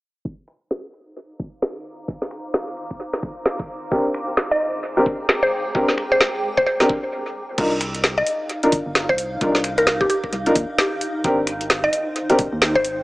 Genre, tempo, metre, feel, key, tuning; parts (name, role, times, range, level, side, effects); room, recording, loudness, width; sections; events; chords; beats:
UK garage, two-step garage; 131 BPM; 4/4; swing 60% on 16ths; C minor; A4 = 439 Hz
electronic kick drum; drums; 0.2-12.8 s; -29 LUFS; equal
granular cloud pad; texture; 1.8-13.0 s; Eb4 to D6; -29 LUFS; right 1 dB; built-in reverb, sidechain pumping
garage drum kit; drums; 0.5-13.0 s; crash cymbal, finger snaps, hi-hat, snare drum; -21 LUFS; equal; analog delay
dark grand piano; stabs; 3.9-12.4 s; C4 to Bb4; -21 LUFS; equal; dub echo
mallet-like synth pluck; melody; 4.5-12.9 s; G4 to Eb5; -22 LUFS; equal; chorus, analog delay
organ-like FM bass; bass; 7.6-13.0 s; Eb1 to Eb2; -31 LUFS; equal; sidechain pumping
moderate plate reverb, RT60 1.9 s; echo-heavy mix, low-pass filter, small speaker sound; -18 LUFS; side -20 dB against mid
0.3-7.6 A section; 7.6-13.0 B section
fade-in on ambient pad 0.3-7.6; filter sweep 0.3-7.6; stop 7.1-7.6
0.3 Cm11; 3.9 Abmaj9#11; 7.6 Cmadd11; 11.2 Abmaj7
| 0.25 0.71 1.17 1.62 | 2.08 2.54 3.00 3.46 | 3.92 4.37 4.83 5.29 | 5.75 6.21 6.66 7.12 | 7.58 8.04 8.50 8.95 | 9.41 9.87 10.33 10.79 | 11.24 11.70 12.16 12.62